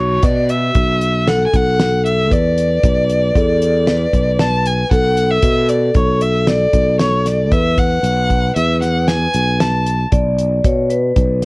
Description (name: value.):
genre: progressive instrumental, band music in an uneven meter.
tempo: 115 BPM.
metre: 5/4.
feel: straight.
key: B dorian.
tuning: A4 = 440 Hz.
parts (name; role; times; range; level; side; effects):
rich violin; melody; 0.0-10.0 s; C#5 to A5; -18 LUFS; equal; none.
vibraphone with medium mallets; second line; 0.0-11.4 s; F#4 to D5; -19 LUFS; left 1 dB; ping-pong delay.
sustaining fretless electric bass; bass; 0.0-11.4 s; B1 to B2; -17 LUFS; equal; none.
damped 70s drum kit; drums; 0.2-11.4 s; hi-hat, kick drum, snare drum; -17 LUFS; equal; none.
room: moderate studio ambience, RT60 0.5 s.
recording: worn, warbling old tape, cassette tape, warbly pitch drift.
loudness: -12 LUFS.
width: side -24 dB against mid.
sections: 0.0-11.4 A section.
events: none.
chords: 0.0 B5; 2.3 E7sus4; 4.9 Bm7; 7.5 E5; 10.1 Bm.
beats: 0.23 0.75 1.27 1.79 | 2.31 2.83 3.35 3.87 4.39 | 4.91 5.43 5.95 6.47 6.99 | 7.51 8.03 8.55 9.08 9.60 | 10.12 10.64 11.16.